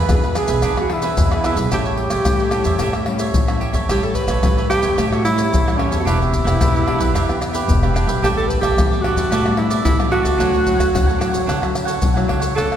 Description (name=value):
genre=samba and choro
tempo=111 BPM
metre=4/4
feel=straight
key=D major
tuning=A4 = 440 Hz
part: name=breathy alto saxophone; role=melody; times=0.0-12.8 s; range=C#4 to B4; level=-21 LUFS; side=right 2 dB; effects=none
part: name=cavaquinho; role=accompaniment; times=0.0-12.8 s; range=D4 to F#5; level=-25 LUFS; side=right 4 dB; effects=none
part: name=nylon-string guitar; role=accompaniment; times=0.0-12.8 s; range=A2 to G#4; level=-25 LUFS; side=left 2 dB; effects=none
part: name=upright bass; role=bass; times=0.0-12.8 s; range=E1 to E3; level=-21 LUFS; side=equal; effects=none
part: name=maracas, surdo, pandeiro and tamborim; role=percussion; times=0.1-12.8 s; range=none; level=-20 LUFS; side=left 2 dB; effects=none
room=wet concert hall reverb, RT60 2.4 s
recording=recorded in a church or concert hall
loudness=-15 LUFS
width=side -9 dB against mid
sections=0.0-12.6 A section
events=drum fill 3.5-3.9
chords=0.0 E7; 1.7 A7; 6.1 Em7; 8.2 A9sus4; 10.4 Dmaj9